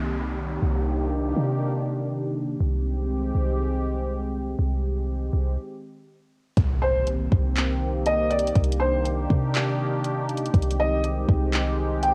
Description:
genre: hip hop, atmospheric cloud-rap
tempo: 121 BPM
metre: 4/4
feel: half-time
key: C minor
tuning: A4 = 439 Hz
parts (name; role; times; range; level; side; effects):
- sweeping resonant pad; sustained chords; 0.0-12.1 s; Eb3 to G4; -31 LUFS; equal; lush chorus, sidechain pumping, cassette tape
- clean 808-style bass; bass; 0.0-12.1 s; C2 to C3; -28 LUFS; equal; none
- downlifter and impact; sound effects; 0.0-2.6, 6.6-8.6 s; none; -40 LUFS; equal; none
- smooth R&B drum kit; drums; 6.6-12.1 s; handclaps, hi-hat, kick drum; -27 LUFS; equal; overdrive, cassette tape
- felt-muted upright piano; melody; 6.8-12.1 s; C5 to G5; -27 LUFS; equal; cassette tape, tape echo
room: little or no reverb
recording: home recording on cassette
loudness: -25 LUFS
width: mono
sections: 0.0-6.6 A section; 6.6-12.1 B section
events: stop 5.6-6.6; impact 6.6-8.6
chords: 0.0 Cm7; 2.6 Abmaj7/C; 6.6 Cm7; 10.5 Abmaj7/C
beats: 0.13 | 0.62 1.12 1.61 2.11 | 2.60 3.10 3.60 4.09 | 4.59 5.08 5.58 6.08 | 6.57 7.07 7.56 8.06 | 8.56 9.05 9.55 10.04 | 10.54 11.04 11.53 12.03

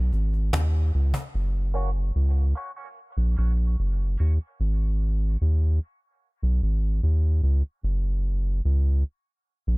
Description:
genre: dub reggae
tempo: 74 BPM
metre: 4/4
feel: straight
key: F# major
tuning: A4 = 440 Hz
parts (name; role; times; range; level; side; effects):
- soft dub sub bass; bass; 0.0-9.8 s; F#1 to D#2; -21 LUFS; equal; none
- cajon; drums; 0.1-1.3 s; none; -32 LUFS; equal; none
- clean electric guitar; accompaniment; 1.7-4.3 s; A#3 to F#4; -38 LUFS; right 1 dB; analog chorus, high-pass filter, low-pass filter, dub echo
room: studio reverb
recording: none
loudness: -22 LUFS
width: side -28 dB against mid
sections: 0.0-1.3 A section; 1.3-9.8 B section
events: break 0.0-1.3; filter sweep on clean electric guitar 0.0-7.8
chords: 0.0 G#m; 1.3 F#; 4.6 G#5; 7.8 F#5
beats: 0.52 | 1.34 2.15 2.96 3.77 | 4.59 5.40 6.21 7.02 | 7.84 8.65 9.46

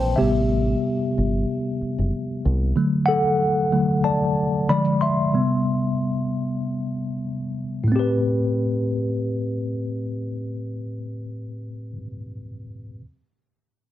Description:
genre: R&B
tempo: 93 BPM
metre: 4/4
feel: swing 54% on 16ths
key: A dorian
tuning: A4 = 440 Hz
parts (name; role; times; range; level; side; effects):
- tine electric piano; accompaniment; 0.0-13.0 s; A2 to C6; -21 LUFS; left 1 dB; medium stereo tremolo, plate reverb
- deep dub fingered electric bass; bass; 0.0-2.7 s; F#1 to C2; -22 LUFS; equal; none
room: moderate studio reverb, RT60 0.6 s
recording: heavily compressed radio sound, multiband compression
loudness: -20 LUFS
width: side -12 dB against mid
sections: 0.0-7.9 A section; 7.9-10.5 B section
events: tine electric piano solo 0.0-7.9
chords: 0.2 Am9; 2.8 D; 4.7 E7b9; 5.3 Cmaj7; 7.9 Am9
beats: | 0.17 0.82 1.46 2.11 | 2.75 3.40 4.04 4.69 | 5.33 5.98 6.62 7.27 | 7.92 8.56 9.21 9.85

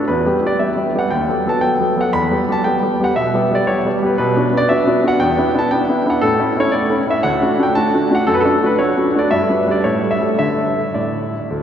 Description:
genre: classical-period piano sonatina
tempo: 117 BPM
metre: 4/4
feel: rubato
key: D major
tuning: A4 = 437 Hz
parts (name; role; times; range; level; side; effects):
- clear baby grand piano; solo; 0.0-11.6 s; D2 to B5; -14 LUFS; equal; none
room: wet cathedral reverb, RT60 6.2 s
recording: heard from further back in the room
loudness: -14 LUFS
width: side -9 dB against mid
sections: 0.0-11.6 A section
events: none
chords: 0.1 Em; 1.1 B7/D#; 2.1 Em; 4.2 Bm; 5.2 E5; 6.2 A; 7.2 D; 8.3 D/F#; 9.3 G; 9.8 A7; 10.4 D5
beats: | 0.08 0.60 1.11 1.62 | 2.14 2.65 3.16 3.67 | 4.19 4.70 5.21 5.71 | 6.22 6.73 7.24 7.76 | 8.28 8.80 9.32 9.85 | 10.39 10.96 11.51

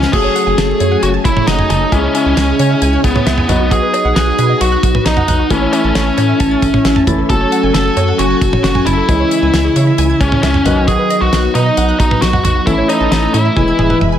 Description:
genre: synth-pop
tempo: 134 BPM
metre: 4/4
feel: straight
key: F# dorian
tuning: A4 = 440 Hz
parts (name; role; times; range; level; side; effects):
- biting lead guitar; melody; 0.0-14.0 s; B3 to A4; -15 LUFS; equal; overdrive, ping-pong delay
- warm grand piano; accompaniment; 0.0-14.2 s; D#3 to G#4; -20 LUFS; left 4 dB; none
- ensemble organ-string; sustained chords; 0.0-14.2 s; C#3 to G#5; -19 LUFS; equal; ensemble chorus
- wide unison pluck; arpeggios; 0.0-14.2 s; E#3 to A6; -23 LUFS; right 4 dB; ping-pong delay
- rubbery square bass; bass; 0.0-14.2 s; E1 to C#3; -17 LUFS; equal; none
- damped 70s drum kit; drums; 0.0-14.1 s; cowbell, crash cymbal, hi-hat, kick drum, snare drum, toms; -17 LUFS; equal; none
room: light reverb, small room ambience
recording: none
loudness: -10 LUFS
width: side -10 dB against mid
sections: 0.1-14.2 A section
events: drum fill 13.6-14.2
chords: 0.1 F#madd9; 1.9 C#m; 3.5 B; 5.5 A; 7.3 F#madd9; 9.1 C#m; 10.7 B; 12.7 A; 13.6 E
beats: | 0.13 0.58 1.03 1.48 | 1.92 2.37 2.82 3.27 | 3.71 4.16 4.61 5.06 | 5.50 5.95 6.40 6.85 | 7.29 7.74 8.19 8.64 | 9.09 9.53 9.98 10.43 | 10.88 11.32 11.77 12.22 | 12.67 13.12 13.56 14.01

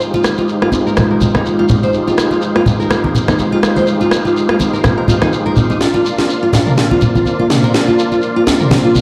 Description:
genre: afro house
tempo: 124 BPM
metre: 4/4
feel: swing 56% on 16ths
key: F dorian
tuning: A4 = 440 Hz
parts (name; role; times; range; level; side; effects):
- dark analog pad; sustained chords; 0.0-9.0 s; Ab3 to D5; -20 LUFS; equal; chorus
- tonewheel organ; stabs; 0.0-9.0 s; D4 to F5; -23 LUFS; equal; overdrive, chorus vibrato, slow rotary speaker, low-pass filter, dub echo
- warm sub bass; bass; 0.0-9.0 s; none; barely audible; none; none
- shekere; percussion; 0.0-9.0 s; none; -30 LUFS; equal; none
- nylon-string guitar; arpeggios; 0.1-8.9 s; Eb4 to C5; -20 LUFS; equal; vintage 12-bit sampler grit, low-pass filter, dub echo
- congas; percussion; 0.1-9.0 s; none; -19 LUFS; equal; none
- house drum kit; drums; 0.2-8.8 s; rim click, snare drum, toms; -19 LUFS; equal; none
room: moderate plate reverb, RT60 1.0 s, studio reverb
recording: played on a big sound system in a bare room, large studio reverb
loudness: -13 LUFS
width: mono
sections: 0.0-9.0 A section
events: build-up 0.0-9.0; filter sweep on tonewheel organ 0.0-9.0; drum fill 5.8-9.0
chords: 0.0 Fm9; 5.8 Bb/F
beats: | 0.00 0.49 0.97 1.45 | 1.94 2.42 2.91 3.39 | 3.87 4.36 4.84 5.33 | 5.81 6.29 6.78 7.26 | 7.75 8.23 8.71

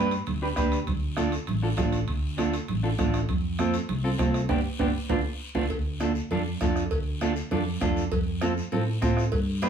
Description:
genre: latin, cumbia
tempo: 199 BPM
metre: 4/4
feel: straight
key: D dorian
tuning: A4 = 440 Hz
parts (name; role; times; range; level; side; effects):
- clean electric guitar; accompaniment; 0.0-9.7 s; B3 to B4; -28 LUFS; equal; none
- fingered electric bass; bass; 0.0-9.7 s; G1 to A2; -29 LUFS; equal; none
- guiro; percussion; 0.1-9.7 s; none; -42 LUFS; left 4 dB; none
- timbales and cowbell; percussion; 0.1-9.7 s; none; -37 LUFS; right 4 dB; none
- congas; percussion; 0.3-9.7 s; none; -32 LUFS; right 6 dB; none
- bombo; percussion; 0.6-9.7 s; none; -30 LUFS; right 1 dB; none
room: wet studio ambience, RT60 0.5 s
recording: heard from further back in the room, small room ambience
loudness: -24 LUFS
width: side -7 dB against mid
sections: 0.0-5.7 A section; 5.7-9.7 B section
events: band accent 4.5-5.7; drum fill 4.9-5.7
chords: 0.0 G; 0.9 Dm; 3.3 F; 4.5 G; 5.1 Dm; 8.1 F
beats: 0.27 0.57 | 0.87 1.17 1.47 1.78 | 2.08 2.38 2.68 2.98 | 3.29 3.59 3.89 4.19 | 4.49 4.80 5.10 5.40 | 5.70 6.00 6.31 6.61 | 6.91 7.21 7.51 7.82 | 8.12 8.42 8.72 9.02 | 9.32 9.62

